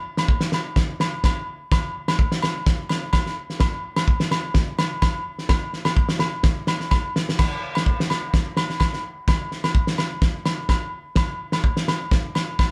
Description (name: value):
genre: highlife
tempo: 127 BPM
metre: 4/4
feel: swing 54% on 16ths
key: none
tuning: none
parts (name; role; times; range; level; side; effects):
- warm soul drum kit; drums; 0.2-12.7 s; crash cymbal, kick drum, snare drum; -23 LUFS; equal; none
- agogo bells; percussion; 0.2-12.7 s; none; -30 LUFS; equal; none
room: moderate studio ambience, RT60 0.5 s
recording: band playing live in one room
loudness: -23 LUFS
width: mono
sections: 0.0-7.4 A section; 7.4-12.7 B section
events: drum fill 6.9-7.4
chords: none